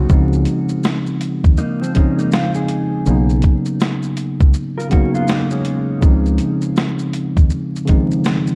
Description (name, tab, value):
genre	lo-fi hip hop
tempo	81 BPM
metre	4/4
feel	swing 62% on 16ths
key	Db major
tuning	A4 = 438 Hz
part	mellow electric guitar	second line	0.0-6.0 s	F3 to Bb4	-28 LUFS	equal	spring reverb, low-pass filter, tape echo
part	mellow tine electric piano	accompaniment	0.0-8.6 s	Db3 to Eb4	-20 LUFS	equal	low-pass filter
part	deep dub fingered electric bass	bass	0.0-7.5 s	Cb2 to Eb2	-19 LUFS	equal	none
part	boom bap sampler-style drum kit	drums	0.1-8.6 s	hi-hat, kick drum, shaker, snare drum	-17 LUFS	equal	none
room	little or no reverb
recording	dark, warm production, vinyl crackle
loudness	-17 LUFS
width	mono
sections	0.0-8.6 A section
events	none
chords	0.1 Dbmaj9; 3.1 Cbmaj9; 6.0 Dbmaj9